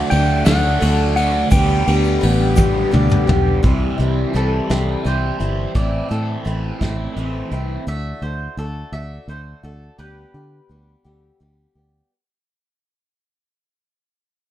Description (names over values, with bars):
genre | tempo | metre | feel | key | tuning
folk rock and heartland rock | 57 BPM (dotted quarters) | 6/8 | straight | unclear | A4 = 437 Hz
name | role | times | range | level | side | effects
pedal steel guitar | melody | 0.0-2.3 s | F#5 to G5 | -21 LUFS | right 1 dB | none
picked acoustic archtop guitar | accompaniment | 0.0-12.1 s | A2 to G4 | -25 LUFS | left 3 dB | none
tonewheel organ | sustained chords | 0.0-3.6 s | F#3 to D5 | -30 LUFS | equal | none
crunchy overdriven guitar | riff | 0.0-7.8 s | A2 to G4 | -23 LUFS | right 1 dB | phaser
fingered electric bass | bass | 0.1-12.0 s | G1 to D3 | -20 LUFS | equal | none
soft brush drum kit | drums | 0.1-7.7 s | hi-hat, kick drum, ride cymbal, snare drum, toms | -20 LUFS | equal | none
egg shaker | percussion | 0.5-3.2 s | none | -37 LUFS | right 6 dB | none
mandolin | second line | 4.4-11.4 s | G4 to E5 | -30 LUFS | right 1 dB | none
room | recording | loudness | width
light reverb | dark, warm production | -16 LUFS | side -12 dB against mid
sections
0.0-3.6 A section; 3.6-12.1 B section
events
drum fill 2.6-3.6; fade-out 3.6-12.1; mandolin solo 3.6-12.1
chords
0.0 D; 1.5 G; 3.6 C; 5.7 Am; 7.9 D; 10.0 G/D